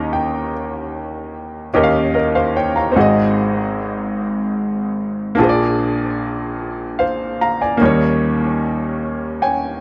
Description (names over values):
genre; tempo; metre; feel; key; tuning
gospel; 50 BPM (dotted quarters); 6/8; straight; unclear; A4 = 439 Hz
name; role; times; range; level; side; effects
clear baby grand piano; solo; 0.0-9.8 s; Ab1 to Bb5; -19 LUFS; equal; tape echo
room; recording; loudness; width
small room ambience; dry, close 1970s-style studio recording; -18 LUFS; mono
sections
0.0-9.8 A section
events
grand piano fill 0.0-0.5, 9.0-9.8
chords
0.0 Eb7; 3.0 Ab7; 5.4 Bb7; 7.8 Eb7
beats
| 0.54 1.75 | 2.96 4.17 | 5.38 6.60 | 7.81 9.02